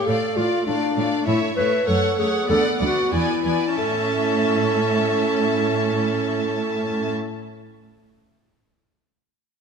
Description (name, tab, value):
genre	quick classical-period movement for symphony orchestra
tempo	91-100 BPM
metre	2/4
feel	straight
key	A major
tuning	A4 = 442 Hz
part	warm chamber violin section	melody	0.0-7.1 s	E5 to A5	-28 LUFS	left 1 dB	none
part	mellow clarinet	second line	0.0-7.1 s	D4 to B4	-22 LUFS	equal	none
part	rich chamber violin section	second line	0.0-7.1 s	C#5 to E5	-28 LUFS	left 4 dB	none
part	rich chamber viola section	accompaniment	0.0-7.1 s	A3 to C#4	-28 LUFS	right 3 dB	none
part	warm chamber cello section	bass	0.1-7.1 s	D2 to A2	-26 LUFS	right 3 dB	none
room	wet scoring stage reverb, RT60 1.7 s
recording	none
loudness	-19 LUFS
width	side -6 dB against mid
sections	0.0-3.8 A section; 3.8-6.4 B section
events	slowing down 0.7-3.8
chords	0.1 Dm/A; 1.9 F#m; 2.5 Bm7/D; 3.1 E7; 3.8 A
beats	| 0.07 0.67 | 1.27 1.88 | 2.50 3.13 | 3.78 4.43 | 5.07 5.71